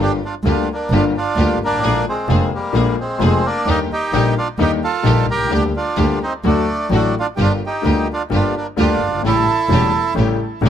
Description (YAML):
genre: tango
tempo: 130 BPM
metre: 4/4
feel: rubato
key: G minor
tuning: A4 = 444 Hz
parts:
  - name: bandoneon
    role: melody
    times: 0.0-10.7 s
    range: G3 to Bb4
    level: -20 LUFS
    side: right 3 dB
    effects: none
  - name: warm concert grand piano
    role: accompaniment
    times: 0.0-10.7 s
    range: E1 to G4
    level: -20 LUFS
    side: left 5 dB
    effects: none
  - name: rich studio string section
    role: stabs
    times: 0.0-10.7 s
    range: A3 to Ab4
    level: -26 LUFS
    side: right 1 dB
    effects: none
  - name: dark double bass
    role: bass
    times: 0.0-10.7 s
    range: E1 to Eb2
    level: -20 LUFS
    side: right 2 dB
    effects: none
room: light reverb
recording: close, detailed microphones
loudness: -15 LUFS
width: side -9 dB against mid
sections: 0.0-10.7 A section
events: none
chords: 0.0 Gm7; 1.8 Bb7; 3.7 Ebmaj7; 5.5 Gm/D; 6.4 D; 7.4 Gm7; 9.2 A7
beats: 0.44 0.91 1.37 | 1.83 2.29 2.75 3.21 | 3.67 4.13 4.59 5.05 | 5.51 5.98 6.44 6.91 | 7.38 7.85 8.32 8.78 | 9.24 9.71 10.17 10.63